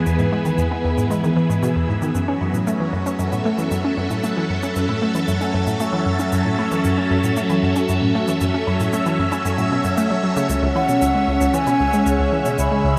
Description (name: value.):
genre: ambient, sequencer-driven space music.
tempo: 115 BPM.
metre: 4/4.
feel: straight.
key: unclear.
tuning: A4 = 441 Hz.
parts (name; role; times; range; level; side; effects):
phased string machine; sustained chords; 0.0-13.0 s; C#3 to E5; -22 LUFS; equal; ensemble chorus, phaser.
hollow square pluck; riff; 0.0-12.9 s; C#2 to C#4; -23 LUFS; equal; chorus, phaser, delay.
shaker and woodblock; percussion; 0.1-12.7 s; none; -39 LUFS; equal; delay.
wooden flute; melody; 10.8-13.0 s; F#5 to B5; -24 LUFS; equal; delay.
room: wet shimmer reverb, RT60 6.9 s.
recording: none.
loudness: -20 LUFS.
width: mono.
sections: 0.0-13.0 A section.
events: fade-in on drum 0.0-13.0.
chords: 0.0 E; 2.1 F#m7; 10.5 C#m.